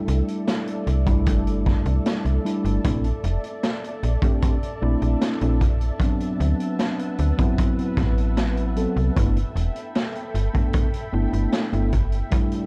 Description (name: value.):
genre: vaporwave.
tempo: 76 BPM.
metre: 4/4.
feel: straight.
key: G major.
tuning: A4 = 440 Hz.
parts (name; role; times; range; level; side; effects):
mellow tine electric piano; accompaniment; 0.0-12.7 s; F#3 to A4; -29 LUFS; equal; subtle chorus, analog delay.
soft string machine; sustained chords; 0.0-12.7 s; A4 to B5; -37 LUFS; equal; ensemble chorus.
slap-like FM bass; bass; 0.1-12.2 s; E1 to D2; -24 LUFS; equal; tube saturation.
raw garage drum kit; drums; 0.1-12.7 s; hi-hat, snare drum; -32 LUFS; equal; none.
kick drum; drums; 1.1-12.5 s; none; -25 LUFS; equal; none.
room: small room ambience.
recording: dark, warm production, cassette tape.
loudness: -23 LUFS.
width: mono.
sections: 0.0-12.7 A section.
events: none.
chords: 0.0 C69; 2.8 Bbmaj9#11; 6.0 D13; 9.2 G69.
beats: 0.48 1.27 2.06 | 2.85 3.63 4.42 5.21 | 6.00 6.79 7.58 8.37 | 9.16 9.95 10.74 11.53 | 12.32.